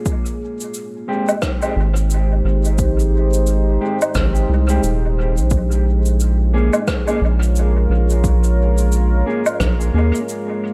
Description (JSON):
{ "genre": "ambient dub", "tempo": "88 BPM", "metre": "4/4", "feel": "swing 60% on 16ths", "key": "Bb dorian", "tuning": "A4 = 443 Hz", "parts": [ { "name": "deep dark ambient pad", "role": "sustained chords", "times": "0.0-10.7 s", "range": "Ab3 to Db5", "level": "-26 LUFS", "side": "equal", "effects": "chorus, built-in reverb" }, { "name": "cabasa, woodblock and rim click", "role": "drums", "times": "0.1-10.4 s", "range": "none", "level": "-26 LUFS", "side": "equal", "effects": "dub echo" }, { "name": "electronic kick drum", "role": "drums", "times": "0.1-9.8 s", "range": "none", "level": "-24 LUFS", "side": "equal", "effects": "overdrive" }, { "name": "mellow electric guitar", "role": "stabs", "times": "1.1-10.2 s", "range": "Ab3 to Ab4", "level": "-28 LUFS", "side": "equal", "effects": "low-pass filter, dub echo" }, { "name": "round analog bass", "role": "bass", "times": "1.8-10.1 s", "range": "Eb1 to Eb2", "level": "-18 LUFS", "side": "equal", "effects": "none" } ], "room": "light reverb, small room reverb", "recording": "none", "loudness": "-17 LUFS", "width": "mono", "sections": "0.0-10.7 A section", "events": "filter sweep on clean electric guitar 0.0-10.7", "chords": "0.1 Abmaj7; 5.5 Bbm7" }